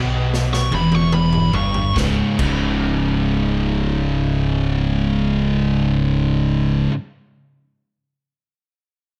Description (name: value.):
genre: stoner and doom metal.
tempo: 70-78 BPM.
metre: 4/4.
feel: straight.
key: C# minor.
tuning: A4 = 440 Hz.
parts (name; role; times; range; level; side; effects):
crunchy overdriven guitar; riff; 0.0-6.9 s; C#2 to C#3; -25 LUFS; equal; none.
thick fuzz guitar; riff; 0.0-6.9 s; C#2 to C#3; -26 LUFS; equal; distortion.
thick fuzz guitar; riff; 0.0-6.9 s; C#2 to C#3; -24 LUFS; equal; distortion.
growling fingered electric bass; bass; 0.0-6.9 s; C#1 to B1; -26 LUFS; equal; overdrive.
raw garage drum kit; drums; 0.3-2.6 s; crash cymbal, kick drum, snare drum, toms; -27 LUFS; equal; none.
fuzz lead guitar; melody; 0.5-2.0 s; B5 to C#6; -27 LUFS; equal; distortion, digital delay.
room: light reverb, studio reverb.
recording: none.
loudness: -19 LUFS.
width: mono.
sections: 0.0-2.0 A section; 2.0-5.4 B section.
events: slowing down 0.0-2.0; lead electric guitar solo 0.0-2.0; drum fill 0.3-2.0.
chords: 0.0 C#m; 2.0 C#5.